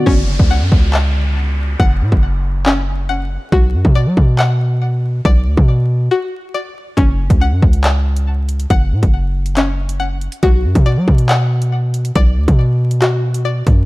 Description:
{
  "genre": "hip hop, drill",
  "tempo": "139 BPM",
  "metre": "4/4",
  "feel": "half-time",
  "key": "F# minor",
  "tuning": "A4 = 440 Hz",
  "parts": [
    { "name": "string-like resonator pluck", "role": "arpeggios", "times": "0.0-13.9 s", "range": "C#4 to A5", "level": "-21 LUFS", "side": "left 3 dB", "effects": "chorus, tape echo" },
    { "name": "hard-hitting 808-style bass", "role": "bass", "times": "0.1-13.9 s", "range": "F#1 to F#3", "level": "-14 LUFS", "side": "equal", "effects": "none" },
    { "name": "drill drum kit", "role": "drums", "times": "0.1-13.8 s", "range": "handclaps, hi-hat, kick drum", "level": "-15 LUFS", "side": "equal", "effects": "none" },
    { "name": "downlifter", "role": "sound effects", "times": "0.1-3.5 s", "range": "none", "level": "-28 LUFS", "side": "equal", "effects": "none" }
  ],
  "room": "little or no reverb",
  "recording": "dark, warm production, vinyl crackle",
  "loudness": "-12 LUFS",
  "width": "side -20 dB against mid",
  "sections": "0.1-13.9 A section",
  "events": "break 0.1-7.0",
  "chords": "0.1 F#m; 3.5 Bm; 7.0 F#m; 10.4 Bm"
}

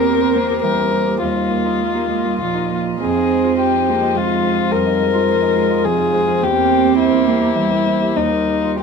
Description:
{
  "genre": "neoclassical piano and strings",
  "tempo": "104 BPM",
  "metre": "3/4",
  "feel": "uneven beats, rubato",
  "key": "F minor",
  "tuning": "A4 = 440 Hz",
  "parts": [
    { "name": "dark violin", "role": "melody", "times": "0.0-8.8 s", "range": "Eb4 to Bb4", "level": "-18 LUFS", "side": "left 7 dB", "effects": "none" },
    { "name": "dark cello", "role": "second line", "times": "0.0-8.8 s", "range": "F3 to C4", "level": "-20 LUFS", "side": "right 6 dB", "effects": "none" },
    { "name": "clear concert grand piano", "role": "accompaniment", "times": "0.0-8.8 s", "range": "Eb2 to G4", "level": "-22 LUFS", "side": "right 6 dB", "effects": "none" },
    { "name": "warm chamber string section", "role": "sustained chords", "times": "0.0-8.8 s", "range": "F3 to Eb5", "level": "-29 LUFS", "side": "left 2 dB", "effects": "none" },
    { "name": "Celtic harp", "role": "arpeggios", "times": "0.0-8.8 s", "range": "C4 to Eb5", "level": "-26 LUFS", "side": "right 2 dB", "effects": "none" }
  ],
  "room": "light reverb",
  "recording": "minimal, uncompressed stereo recording",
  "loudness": "-14 LUFS",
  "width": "side -5 dB against mid",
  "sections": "0.0-8.8 A section",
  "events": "none",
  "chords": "0.0 C7/E; 1.2 Ebadd9; 3.0 Fm7; 6.4 C7/E; 8.2 Ebadd9"
}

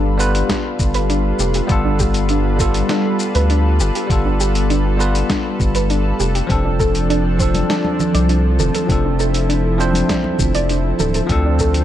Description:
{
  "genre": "sunset chillout",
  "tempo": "100 BPM",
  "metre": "4/4",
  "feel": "straight",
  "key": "unclear",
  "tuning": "A4 = 440 Hz",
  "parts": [
    { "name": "barky tine electric piano", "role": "accompaniment", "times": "0.0-11.8 s", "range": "F3 to C5", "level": "-22 LUFS", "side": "left 1 dB", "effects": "auto-pan, ping-pong delay" },
    { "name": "lush unison pad", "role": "sustained chords", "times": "0.0-11.8 s", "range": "D3 to B4", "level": "-22 LUFS", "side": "equal", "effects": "chorus" },
    { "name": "round analog bass", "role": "bass", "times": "0.0-11.8 s", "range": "D1 to D2", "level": "-18 LUFS", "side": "equal", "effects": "tube saturation" },
    { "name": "soft round pluck", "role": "arpeggios", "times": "0.2-11.7 s", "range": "D4 to D5", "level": "-24 LUFS", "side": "right 2 dB", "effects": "wide subtle chorus, ping-pong delay" },
    { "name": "dusty soul sampler-style drum kit", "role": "drums", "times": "0.2-11.8 s", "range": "hi-hat, shaker, snare drum", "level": "-25 LUFS", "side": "equal", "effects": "none" },
    { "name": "electronic kick drum", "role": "drums", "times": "0.5-11.7 s", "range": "none", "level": "-20 LUFS", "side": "equal", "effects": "none" },
    { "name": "congas", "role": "percussion", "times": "7.5-11.3 s", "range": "none", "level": "-26 LUFS", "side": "right 3 dB", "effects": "none" }
  ],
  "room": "light reverb",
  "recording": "dark, warm production",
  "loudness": "-14 LUFS",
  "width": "side -11 dB against mid",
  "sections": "0.0-11.8 A section",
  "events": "none",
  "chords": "0.0 G9; 6.5 F6; 11.3 Dm7"
}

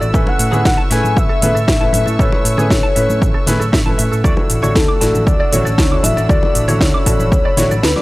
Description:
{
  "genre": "nu-disco, nu disco",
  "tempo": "117 BPM",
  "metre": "4/4",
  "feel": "straight",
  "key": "A major",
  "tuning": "A4 = 440 Hz",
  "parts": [
    { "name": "warm concert grand piano", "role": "accompaniment", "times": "0.0-8.0 s", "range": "A3 to C#6", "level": "-21 LUFS", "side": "equal", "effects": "sidechain pumping" },
    { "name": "dark studio violin section", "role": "sustained chords", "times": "0.0-8.0 s", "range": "A3 to E6", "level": "-27 LUFS", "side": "right 1 dB", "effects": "sidechain pumping" },
    { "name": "direct-recorded clean electric guitar", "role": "riff", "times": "0.0-8.0 s", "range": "G#4 to D6", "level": "-25 LUFS", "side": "right 2 dB", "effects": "analog chorus" },
    { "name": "hollow-body short-scale picked electric bass", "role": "bass", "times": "0.0-7.9 s", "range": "A1 to A2", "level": "-18 LUFS", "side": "equal", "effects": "none" },
    { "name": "house drum kit", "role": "drums", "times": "0.0-8.0 s", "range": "hi-hat, shaker, snare drum", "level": "-20 LUFS", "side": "equal", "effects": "overdrive" },
    { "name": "electronic kick drum", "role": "drums", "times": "0.1-7.4 s", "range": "none", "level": "-16 LUFS", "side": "equal", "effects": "overdrive" },
    { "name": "soft octave-layered synth lead", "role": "melody", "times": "0.2-8.0 s", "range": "A4 to G#5", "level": "-19 LUFS", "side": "left 2 dB", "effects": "chorus, phaser, tape echo" },
    { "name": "congas", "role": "percussion", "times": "0.3-8.0 s", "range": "none", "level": "-25 LUFS", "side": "left 1 dB", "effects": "none" }
  ],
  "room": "little or no reverb",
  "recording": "dry, gritty hardware recording",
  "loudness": "-12 LUFS",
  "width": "side -19 dB against mid",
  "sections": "0.0-8.0 A section",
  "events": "kick drops out 7.8",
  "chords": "0.1 Amaj7; 4.2 Dmaj9"
}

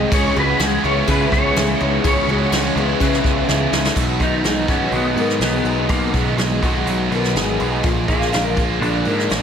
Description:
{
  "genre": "rock, shoegaze and dream pop",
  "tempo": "124 BPM",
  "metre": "4/4",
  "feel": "straight",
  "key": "B major",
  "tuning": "A4 = 441 Hz",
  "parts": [
    { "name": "clean electric guitar", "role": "melody", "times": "0.0-9.4 s", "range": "G#3 to D#5", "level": "-23 LUFS", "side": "equal", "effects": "ensemble chorus, digital delay" },
    { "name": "picked twelve-string acoustic guitar", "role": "arpeggios", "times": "0.0-9.4 s", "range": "D#4 to B4", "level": "-26 LUFS", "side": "left 7 dB", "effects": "ensemble chorus, digital delay" },
    { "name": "distorted electric guitar", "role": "riff", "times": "0.0-9.4 s", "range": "A#2 to E4", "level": "-25 LUFS", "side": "right 1 dB", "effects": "overdrive" },
    { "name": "overdriven electric guitar", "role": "riff", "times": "0.0-9.4 s", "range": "A#2 to G#4", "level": "-23 LUFS", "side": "right 10 dB", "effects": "reverse reverb" },
    { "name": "overdriven semi-hollow guitar", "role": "riff", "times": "0.0-9.4 s", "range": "A#2 to G#4", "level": "-25 LUFS", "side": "left 10 dB", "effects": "lush chorus" },
    { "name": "growling picked electric bass", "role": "bass", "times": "0.0-9.4 s", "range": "G#1 to C#3", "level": "-23 LUFS", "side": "equal", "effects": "overdrive" },
    { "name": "jazz brush drum kit", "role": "drums", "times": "0.1-9.4 s", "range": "crash cymbal, hi-hat, kick drum, snare drum", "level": "-22 LUFS", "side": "equal", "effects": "none" }
  ],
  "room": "light reverb, small room reverb",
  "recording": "none",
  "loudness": "-15 LUFS",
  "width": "side -8 dB against mid",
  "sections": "0.0-4.0 A section; 4.0-9.4 B section",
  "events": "drum fill 3.5-4.0",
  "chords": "0.1 C#m7; 4.0 B6; 7.8 A#7"
}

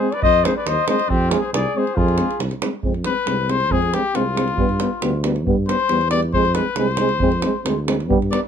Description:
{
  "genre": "balkan folk, Balkan brass band",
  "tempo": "137 BPM",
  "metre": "2/4",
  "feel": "straight",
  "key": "F dorian sharp4",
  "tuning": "A4 = 440 Hz",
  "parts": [
    { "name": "mellow flugelhorn", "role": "melody", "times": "0.0-2.4 s", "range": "G4 to Eb5", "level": "-21 LUFS", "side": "left 3 dB", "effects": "none" },
    { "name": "clear trumpet", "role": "second line", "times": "0.0-8.4 s", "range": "C4 to D5", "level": "-22 LUFS", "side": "left 5 dB", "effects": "none" },
    { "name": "mellow euphonium", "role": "accompaniment", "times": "0.0-8.4 s", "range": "B3 to C4", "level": "-25 LUFS", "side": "left 5 dB", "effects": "none" },
    { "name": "mellow euphonium", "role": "accompaniment", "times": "0.0-8.4 s", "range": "G3 to Ab3", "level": "-25 LUFS", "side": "right 8 dB", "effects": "none" },
    { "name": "davul", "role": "percussion", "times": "0.1-8.4 s", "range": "none", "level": "-25 LUFS", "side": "right 3 dB", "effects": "none" },
    { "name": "mellow tuba", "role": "bass", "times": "0.2-8.3 s", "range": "C2 to G2", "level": "-23 LUFS", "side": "equal", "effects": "none" }
  ],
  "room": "light reverb",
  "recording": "close, detailed microphones",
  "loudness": "-17 LUFS",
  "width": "side -8 dB against mid",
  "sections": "0.0-2.8 A section; 2.8-8.5 B section",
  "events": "trumpet solo 2.8-8.5",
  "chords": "0.2 Ab/F; 1.1 Fm; 4.6 G; 6.3 Fm"
}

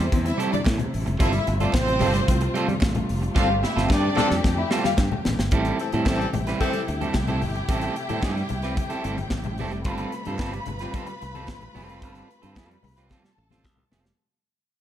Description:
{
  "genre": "disco",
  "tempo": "111 BPM",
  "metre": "4/4",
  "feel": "straight",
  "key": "unclear",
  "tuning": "A4 = 440 Hz",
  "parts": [
    { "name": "warm studio violin section", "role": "second line", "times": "0.0-14.2 s", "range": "C4 to B5", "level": "-30 LUFS", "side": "left 1 dB", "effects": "none" },
    { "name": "electric guitar at the edge of break-up", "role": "accompaniment", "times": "0.0-14.1 s", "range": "G3 to B4", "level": "-29 LUFS", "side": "right 4 dB", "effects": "none" },
    { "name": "dark symphonic string section", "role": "sustained chords", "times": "0.0-14.1 s", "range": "C3 to G4", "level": "-32 LUFS", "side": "left 1 dB", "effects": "none" },
    { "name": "modern bright fingered electric bass", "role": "bass", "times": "0.0-14.1 s", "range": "F1 to A2", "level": "-27 LUFS", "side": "equal", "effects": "none" },
    { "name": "modern studio drum kit", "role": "drums", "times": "0.1-14.2 s", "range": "hi-hat, kick drum, snare drum", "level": "-26 LUFS", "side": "equal", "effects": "none" },
    { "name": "congas", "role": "percussion", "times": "0.1-14.0 s", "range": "none", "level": "-33 LUFS", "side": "left 6 dB", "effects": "none" },
    { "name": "group handclap", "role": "percussion", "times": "0.7-13.8 s", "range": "none", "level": "-42 LUFS", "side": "right 4 dB", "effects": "none" },
    { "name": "warm horn section", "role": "stabs", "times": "3.4-6.8 s", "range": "E3 to A4", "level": "-28 LUFS", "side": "left 4 dB", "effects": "none" }
  ],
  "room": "moderate large studio reverb, RT60 0.9 s",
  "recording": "none",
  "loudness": "-21 LUFS",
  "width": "side -11 dB against mid",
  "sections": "0.0-5.5 A section; 5.5-14.2 B section",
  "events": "drum fill 3.4-5.5, 13.1-14.2; band accent 3.4-5.5; fade-out 5.5-14.2",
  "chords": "0.0 G9sus4; 5.5 Am7; 9.9 G9sus4"
}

